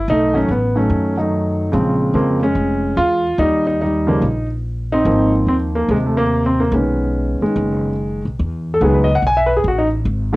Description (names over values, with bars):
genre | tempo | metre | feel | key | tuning
jazz piano trio | 144 BPM | 4/4 | swing 65% on 8ths | unclear | A4 = 440 Hz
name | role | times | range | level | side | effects
warm concert grand piano | melody | 0.0-10.4 s | C3 to G#5 | -16 LUFS | equal | cassette tape
upright bass | bass | 0.0-10.4 s | F1 to F#2 | -20 LUFS | equal | none
room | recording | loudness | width
light reverb | home recording on cassette | -15 LUFS | side -20 dB against mid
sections
0.0-8.4 A section; 8.4-10.4 B section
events
grand piano solo 8.4-10.4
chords
0.1 B9; 1.7 Bbm7; 3.4 Eb; 5.1 Ab6; 6.7 B69; 8.4 Emaj9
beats
| 0.08 0.49 0.90 1.32 | 1.73 2.15 2.56 2.98 | 3.39 3.81 4.22 4.64 | 5.06 5.47 5.89 6.31 | 6.72 7.14 7.56 7.97 | 8.39 8.81 9.22 9.64 | 10.06